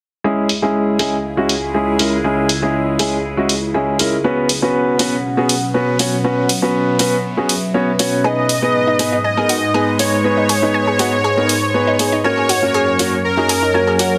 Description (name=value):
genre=progressive house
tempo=120 BPM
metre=4/4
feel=straight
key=unclear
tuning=A4 = 440 Hz
part: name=evolving wavetable pad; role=sustained chords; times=0.4-14.2 s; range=C#2 to F#5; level=-24 LUFS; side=equal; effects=phaser, built-in reverb
part: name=felt-muted upright piano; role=stabs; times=0.2-14.1 s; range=G#3 to C#5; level=-20 LUFS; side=equal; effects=low-pass filter, digital delay
part: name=electronic hi-hat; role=drums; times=0.5-14.1 s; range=none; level=-22 LUFS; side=equal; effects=low-pass filter on hats, low-pass filter on room
part: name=soft supersaw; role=melody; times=8.2-14.2 s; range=A#4 to D#5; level=-20 LUFS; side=equal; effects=tape echo
part: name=analog pluck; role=arpeggios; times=8.2-14.0 s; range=D#4 to G#5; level=-24 LUFS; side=equal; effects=chorus, digital delay
room=light reverb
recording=dense, heavily limited modern master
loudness=-16 LUFS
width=mono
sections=0.2-14.2 A section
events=none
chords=0.2 C#m; 4.2 Bsus2; 8.2 G#m; 12.2 F#